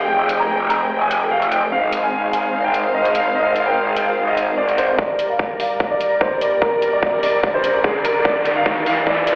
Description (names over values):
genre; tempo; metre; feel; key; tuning
heavy wobble dubstep; 147 BPM; 4/4; half-time; G phrygian; A4 = 441 Hz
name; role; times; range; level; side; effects
warm grand piano; melody; 0.0-9.3 s; Ab4 to Bb5; -19 LUFS; equal; low-pass filter, tape echo
dark studio string section; sustained chords; 0.0-9.4 s; G2 to G5; -21 LUFS; equal; sidechain pumping, low-pass filter
growl bass; bass; 0.0-5.0 s; F1 to Ab1; -21 LUFS; equal; chorus, overdrive
electronic hi-hat; drums; 0.3-9.4 s; none; -28 LUFS; equal; high-pass filter on hats
electronic kick drum; drums; 5.0-9.2 s; none; -20 LUFS; equal; overdrive
riser; sound effects; 6.3-9.4 s; none; -23 LUFS; equal; none
room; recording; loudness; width
moderate lush hall reverb, RT60 2.2 s; played on a big sound system in a bare room, large studio reverb, high-pass filter, telephone sound; -15 LUFS; side -31 dB against mid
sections
0.0-5.0 A section; 5.0-9.4 B section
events
build-up 5.0-9.4; filter sweep on grand piano 5.0-9.4; riser 6.3-9.4; drum fill 8.3-9.4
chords
0.0 Fmadd9; 1.7 Ab6; 5.0 Gm